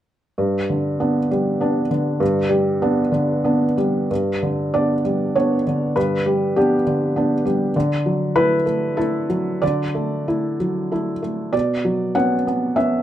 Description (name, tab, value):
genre	neoclassical minimalist piano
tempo	89-101 BPM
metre	3/4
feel	rubato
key	unclear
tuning	A4 = 440 Hz
part	felt-muted upright piano	solo	0.4-13.0 s	G2 to F#5	-18 LUFS	equal	none
room	moderate small room reverb, RT60 0.6 s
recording	none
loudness	-18 LUFS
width	side -12 dB against mid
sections	0.4-4.1 A section; 4.1-13.0 B section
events	none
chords	0.4 G; 7.7 Dadd9; 11.5 Bmadd9